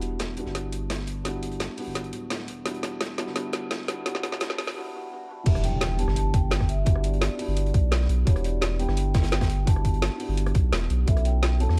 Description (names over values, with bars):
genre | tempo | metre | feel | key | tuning
liquid drum and bass | 171 BPM | 4/4 | straight | E minor | A4 = 439 Hz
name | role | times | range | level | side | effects
felt-muted upright piano | accompaniment | 0.0-11.8 s | F#3 to A4 | -36 LUFS | equal | low-pass filter, delay
saturated sub bass | bass | 0.0-11.8 s | D1 to E2 | -28 LUFS | equal | none
crunchy breakbeat drum kit | drums | 0.0-11.8 s | hi-hat, snare drum | -40 LUFS | equal | high-pass filter on hats, high-pass filter on snare, high-pass filter on room
drum and bass drum kit | drums | 0.0-11.8 s | crash cymbal, hi-hat, rim click, snare drum | -33 LUFS | equal | none
vibraphone with soft mallets | melody | 5.5-11.8 s | C#5 to A5 | -38 LUFS | equal | delay
electronic kick drum | drums | 5.5-11.1 s | none | -24 LUFS | equal | overdrive
impact | sound effects | 5.5-6.9 s | none | -35 LUFS | equal | none
room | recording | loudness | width
small room ambience | dark, warm production, high-pass filter | -26 LUFS | mono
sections
0.0-5.5 A section; 5.5-11.8 B section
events
build-up 0.0-5.5; drum fill 0.0-4.8; filter sweep on felt piano 0.0-5.5; filter sweep 0.0-5.5; break 4.8-5.5; drop 5.5-11.8; impact 5.5-6.9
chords
0.0 Em7; 11.1 B9sus4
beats
0.20 0.55 0.90 | 1.25 1.60 1.95 2.30 | 2.65 3.01 3.36 3.71 | 4.06 4.41 4.76 5.11 | 5.46 5.81 6.16 6.51 | 6.87 7.22 7.57 7.92 | 8.27 8.62 8.97 9.32 | 9.67 10.02 10.38 10.72 | 11.08 11.43 11.78